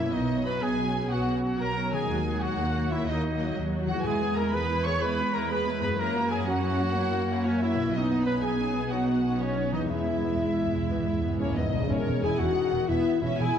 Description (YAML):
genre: cinematic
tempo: 123 BPM (dotted quarters)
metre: 12/8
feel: straight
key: E lydian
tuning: A4 = 443 Hz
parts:
  - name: warm symphonic violin section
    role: melody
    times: 0.0-13.6 s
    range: C#5 to C#6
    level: -39 LUFS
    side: left 3 dB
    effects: none
  - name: warm symphonic violin section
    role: second line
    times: 0.0-13.6 s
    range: C#5 to C#6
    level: -36 LUFS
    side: left 1 dB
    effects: none
  - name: warm symphonic viola section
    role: accompaniment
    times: 0.0-13.6 s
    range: D#3 to A#4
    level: -36 LUFS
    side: right 1 dB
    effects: none
  - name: concert harp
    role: arpeggios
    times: 0.0-13.6 s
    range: F#2 to E5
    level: -35 LUFS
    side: left 8 dB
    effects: none
  - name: mellow trumpet section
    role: stabs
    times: 0.0-11.7 s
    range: C#4 to C#5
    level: -30 LUFS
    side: right 1 dB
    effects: none
  - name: warm symphonic cello section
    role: bass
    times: 0.0-13.6 s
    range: E2 to C#4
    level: -31 LUFS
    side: right 1 dB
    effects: none
  - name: warm symphonic double bass section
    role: bass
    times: 0.0-13.6 s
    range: E1 to F#2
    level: -32 LUFS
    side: right 3 dB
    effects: none
  - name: timpani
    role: percussion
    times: 4.0-4.5, 9.9-12.4 s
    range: E2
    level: -34 LUFS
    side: equal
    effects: none
  - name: large flute ensemble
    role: second line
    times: 11.4-13.6 s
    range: C#5 to G#5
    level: -36 LUFS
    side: equal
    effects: none
  - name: mellow clarinet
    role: second line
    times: 11.4-13.6 s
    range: C#4 to G#4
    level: -34 LUFS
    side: left 3 dB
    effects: none
  - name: dark French horn section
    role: sustained chords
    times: 11.4-13.6 s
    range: C#4 to G#4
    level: -29 LUFS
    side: left 6 dB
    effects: none
room: wet concert hall reverb, RT60 2.4 s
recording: worn, warbling old tape, cassette tape, warbly pitch drift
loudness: -24 LUFS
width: side -8 dB against mid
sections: 0.0-11.9 A section; 11.9-13.6 A section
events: timpani fill 9.9-11.9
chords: 0.1 Badd9; 2.1 D#m; 4.0 E; 6.0 F#7; 7.9 Badd9; 9.9 E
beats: | 0.14 0.63 1.12 1.61 | 2.09 2.58 3.07 3.56 | 4.04 4.53 5.01 5.50 | 5.98 6.47 6.96 7.44 | 7.93 8.42 8.90 9.40 | 9.90 10.39 10.89 11.40 | 11.90 12.39 12.89 13.38